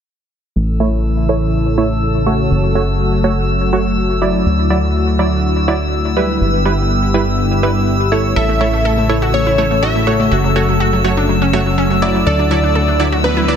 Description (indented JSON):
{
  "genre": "house",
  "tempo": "123 BPM",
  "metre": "4/4",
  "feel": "straight",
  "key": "A mixolydian",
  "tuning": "A4 = 440 Hz",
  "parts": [
    { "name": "warm analog pad", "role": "sustained chords", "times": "0.6-13.6 s", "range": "C#3 to A4", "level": "-19 LUFS", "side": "left 1 dB", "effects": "chorus" },
    { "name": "fat analog bass", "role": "bass", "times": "0.6-13.6 s", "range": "F#1 to D2", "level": "-17 LUFS", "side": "equal", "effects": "none" },
    { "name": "drifting glass-harmonics texture", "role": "texture", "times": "1.1-13.6 s", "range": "E6", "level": "-24 LUFS", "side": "left 1 dB", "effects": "chorus, built-in reverb" },
    { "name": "supersaw stab", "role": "stabs", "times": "0.8-13.6 s", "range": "F#3 to D5", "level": "-19 LUFS", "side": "right 2 dB", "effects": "low-pass filter, ping-pong delay" },
    { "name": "plucky unison lead", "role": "melody", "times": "8.4-13.6 s", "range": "B4 to E5", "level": "-19 LUFS", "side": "equal", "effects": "cassette tape, ping-pong delay" },
    { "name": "wide unison pluck", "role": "arpeggios", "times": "8.4-13.6 s", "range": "F#3 to A4", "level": "-19 LUFS", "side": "equal", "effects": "ping-pong delay" },
    { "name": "riser", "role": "sound effects", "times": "13.0-13.6 s", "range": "none", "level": "-26 LUFS", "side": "left 1 dB", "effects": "none" }
  ],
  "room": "moderate lush hall reverb, RT60 2.6 s",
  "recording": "dense, heavily limited modern master",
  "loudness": "-12 LUFS",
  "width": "side -8 dB against mid",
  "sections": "0.6-13.6 A section",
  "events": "filter sweep on supersaw synth 0.6-13.6",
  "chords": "0.6 A; 2.5 F#m; 4.5 Dadd9; 6.4 G6; 8.4 A; 10.3 F#m; 12.3 Dadd9"
}